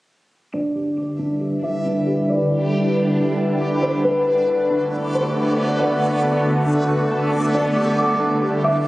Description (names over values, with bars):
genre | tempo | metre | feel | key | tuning
hip hop | 137 BPM | 4/4 | half-time | E minor | A4 = 440 Hz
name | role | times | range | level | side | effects
concert harp | melody | 0.5-8.9 s | B4 to E5 | -23 LUFS | left 1 dB | low-pass filter, tape echo
shimmering ambient pad | sustained chords | 1.0-8.9 s | D3 to B4 | -20 LUFS | equal | chorus, built-in reverb, low-pass filter
clean electric guitar | arpeggios | 0.5-8.9 s | D4 to D6 | -24 LUFS | right 1 dB | lush chorus, low-pass filter, tape echo
backwards swelling texture | texture | 1.3-8.9 s | G3 to D5 | -27 LUFS | equal | built-in reverb
room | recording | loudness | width
moderate lush hall reverb, RT60 2.7 s | recorded on a phone in the room, club reverb | -17 LUFS | side -18 dB against mid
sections
0.5-8.9 A section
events
filter sweep 0.5-8.9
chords
0.5 Em7; 4.0 Bm7; 7.5 Em7